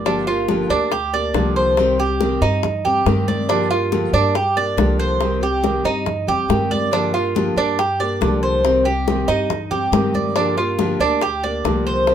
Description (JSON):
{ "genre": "latin, Cuban son and guajira", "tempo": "140 BPM", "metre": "4/4", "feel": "straight", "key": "G minor", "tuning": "A4 = 441 Hz", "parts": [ { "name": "nylon-string guitar", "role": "accompaniment", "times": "0.0-12.1 s", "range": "C3 to G4", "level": "-22 LUFS", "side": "left 1 dB", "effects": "none" }, { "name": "Cuban tres", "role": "arpeggios", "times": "0.0-12.1 s", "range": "D4 to D5", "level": "-19 LUFS", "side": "right 2 dB", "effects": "none" }, { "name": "upright bass", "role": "bass", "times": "0.0-12.1 s", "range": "G1 to G2", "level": "-24 LUFS", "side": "equal", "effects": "none" }, { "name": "bongos", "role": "percussion", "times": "0.1-12.1 s", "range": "none", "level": "-25 LUFS", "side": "left 9 dB", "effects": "none" }, { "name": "congas", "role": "percussion", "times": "0.1-12.1 s", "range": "none", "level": "-26 LUFS", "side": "left 2 dB", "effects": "none" } ], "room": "moderate small room reverb, RT60 0.6 s", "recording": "minimal, uncompressed stereo recording", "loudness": "-16 LUFS", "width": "side -9 dB against mid", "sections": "0.1-12.1 A section", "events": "none", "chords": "0.1 Gm7; 1.8 Cm; 3.5 Gm7; 5.2 Cm; 6.9 Gm7; 8.6 Cm; 10.4 Gm7" }